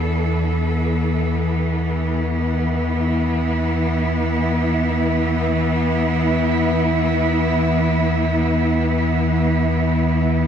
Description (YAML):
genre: dark ambient drone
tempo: free time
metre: none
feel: none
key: unclear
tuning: A4 = 435 Hz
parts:
  - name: bright studio cello section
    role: sustained chords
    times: 0.0-10.5 s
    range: E3 to A4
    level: -20 LUFS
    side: equal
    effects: none
  - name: deep rumbling drone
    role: drone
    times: 0.0-10.5 s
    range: E2 to E3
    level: -20 LUFS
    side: equal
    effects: built-in reverb
room: wet huge ambient reverb, RT60 7.9 s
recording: cassette tape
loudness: -17 LUFS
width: side -8 dB against mid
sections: 0.0-10.5 A section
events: none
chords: 0.0 E5